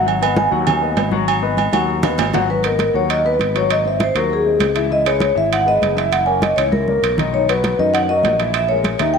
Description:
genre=Afro-Cuban jazz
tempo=198 BPM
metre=4/4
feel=straight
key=G# minor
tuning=A4 = 439 Hz
part: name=vibraphone with medium mallets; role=melody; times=0.0-9.2 s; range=G#4 to G#5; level=-17 LUFS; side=equal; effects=slapback echo
part: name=warm grand piano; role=accompaniment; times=0.0-9.2 s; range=D#3 to F#5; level=-22 LUFS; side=left 9 dB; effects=none
part: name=sustaining fretless electric bass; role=bass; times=0.0-9.2 s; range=F#1 to F#2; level=-23 LUFS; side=equal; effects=none
part: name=agogo bells and timbales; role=percussion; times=0.1-9.1 s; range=none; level=-23 LUFS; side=right 10 dB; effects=none
part: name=congas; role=percussion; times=0.1-9.2 s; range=none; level=-24 LUFS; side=equal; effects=none
room=moderate echo chamber reverb, RT60 1.7 s, studio ambience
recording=1960s-style stereo with parts hard left and right, lossy compression artefacts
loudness=-14 LUFS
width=side -6 dB against mid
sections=0.0-2.5 A section; 2.5-9.2 B section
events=vibraphone solo 0.0-2.5; drum fill 1.6-2.5, 6.7-7.3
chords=0.1 G#m7; 2.5 G#m9; 3.7 G#7b13; 4.9 C#m11; 6.1 F#7; 7.3 Bmaj7; 8.5 A#m7b5

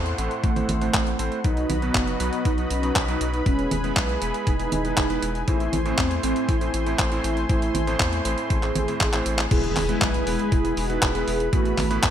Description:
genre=italo disco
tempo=119 BPM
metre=4/4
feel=straight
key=E major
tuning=A4 = 440 Hz
part: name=warm analog pad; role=sustained chords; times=0.0-12.1 s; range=A3 to C6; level=-30 LUFS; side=equal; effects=chorus, tremolo
part: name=warm electric grand piano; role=stabs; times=0.0-12.1 s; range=A2 to C5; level=-30 LUFS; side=right 3 dB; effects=none
part: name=round analog bass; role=bass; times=0.0-12.1 s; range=E1 to E2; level=-28 LUFS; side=left 1 dB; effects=none
part: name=clean 12-bit digital drum machine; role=drums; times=0.1-12.1 s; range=congas, crash cymbal, handclaps, hi-hat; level=-27 LUFS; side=right 1 dB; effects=none
part: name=mellow synth brass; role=melody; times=0.4-12.0 s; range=G#3 to G#4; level=-28 LUFS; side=right 1 dB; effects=chorus, ping-pong delay
part: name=electronic kick drum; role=drums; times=0.4-12.1 s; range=none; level=-24 LUFS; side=left 1 dB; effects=none
part: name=impact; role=sound effects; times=9.5-11.5 s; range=none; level=-34 LUFS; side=left 1 dB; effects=none
room=light reverb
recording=bright 1980s-style digital production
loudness=-21 LUFS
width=side -10 dB against mid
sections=0.0-9.5 A section; 9.5-12.1 B section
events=drum fill 9.1-9.5; impact 9.5-11.5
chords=0.0 Am; 1.4 B; 3.5 E; 5.5 Am; 9.5 E; 11.5 Asus2

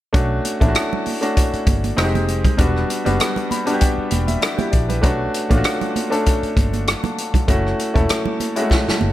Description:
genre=lush 1970s-style soul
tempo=98 BPM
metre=4/4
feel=swing 54% on 16ths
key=B minor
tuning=A4 = 443 Hz
part: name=bright baby grand piano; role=accompaniment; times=0.1-9.1 s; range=G3 to B5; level=-21 LUFS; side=left 1 dB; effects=none
part: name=vintage muted fingered electric bass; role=bass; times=0.1-9.1 s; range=E1 to B1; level=-22 LUFS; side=equal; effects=tube saturation
part: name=vintage drum kit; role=drums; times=0.1-9.0 s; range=hi-hat, kick drum, rim click, snare drum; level=-19 LUFS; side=equal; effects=none
part: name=congas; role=percussion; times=0.5-9.1 s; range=none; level=-27 LUFS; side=right 6 dB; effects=none
room=small room ambience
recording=none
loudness=-16 LUFS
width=side -14 dB against mid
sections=0.1-9.1 A section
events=grand piano fill 3.2-5.0; drum fill 8.7-9.1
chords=0.1 Bm7; 2.0 Fm7; 2.6 Em7; 5.0 Bm7; 7.5 F#m7

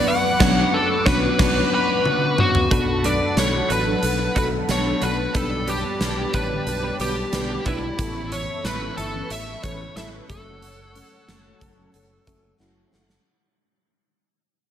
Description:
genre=1980s-style pop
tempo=91 BPM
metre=4/4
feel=straight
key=B minor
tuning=A4 = 439 Hz
part: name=dark smooth lead guitar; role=melody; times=0.0-12.6 s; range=E4 to F#5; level=-24 LUFS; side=equal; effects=overdrive
part: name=mellow FM electric piano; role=accompaniment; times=0.0-13.3 s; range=E3 to A5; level=-27 LUFS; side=left 3 dB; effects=chorus, phaser
part: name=thick fuzz guitar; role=accompaniment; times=0.0-1.6 s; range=B2 to B3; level=-33 LUFS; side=equal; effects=none
part: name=warm analog pad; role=sustained chords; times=0.0-13.2 s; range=G4 to D6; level=-31 LUFS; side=equal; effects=chorus
part: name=direct-recorded clean electric guitar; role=riff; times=0.4-7.9 s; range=A3 to C#5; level=-31 LUFS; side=right 6 dB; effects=ensemble chorus, digital delay
part: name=fingered electric bass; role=bass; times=0.4-13.2 s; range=F#1 to B1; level=-29 LUFS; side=equal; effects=none
part: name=huge arena drum kit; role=drums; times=0.4-13.2 s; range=crash cymbal, hi-hat, kick drum, snare drum, toms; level=-24 LUFS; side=equal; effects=gated reverb
part: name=mellow synth brass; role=stabs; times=3.5-13.0 s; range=D3 to B4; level=-32 LUFS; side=right 2 dB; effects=chorus
room=light reverb, small room ambience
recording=none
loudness=-19 LUFS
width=side -10 dB against mid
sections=0.0-2.7 A section; 2.7-13.3 B section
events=band accent 0.1-2.7; drum fill 2.1-2.7, 12.6-13.3; fade-out 2.7-13.3; FM electric piano fill 11.9-13.3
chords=0.0 Bmadd9; 2.7 Bm7; 5.3 G; 8.0 Aadd9; 10.3 F#m

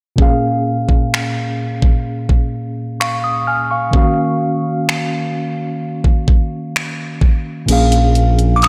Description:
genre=contemporary R&B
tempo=64 BPM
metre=4/4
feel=straight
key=unclear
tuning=A4 = 440 Hz
part: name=mellow tine electric piano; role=accompaniment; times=0.2-8.7 s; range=Bb2 to F6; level=-20 LUFS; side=equal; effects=none
part: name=smooth R&B drum kit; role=drums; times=0.2-8.7 s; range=crash cymbal, finger snaps, hi-hat, kick drum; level=-18 LUFS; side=equal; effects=none
part: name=smooth synth bass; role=bass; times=7.7-8.7 s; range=Bb1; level=-16 LUFS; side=equal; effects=none
part: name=glassy synth bell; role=melody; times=8.6-8.7 s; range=D6 to Eb6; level=-14 LUFS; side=equal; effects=chorus
room=moderate church reverb, RT60 3.0 s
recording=dreamy mix soaked in reverb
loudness=-16 LUFS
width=mono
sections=0.2-7.7 A section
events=kick muted 7.7-8.7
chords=0.2 Bbm7; 3.9 Ebm9; 7.7 Bbm7

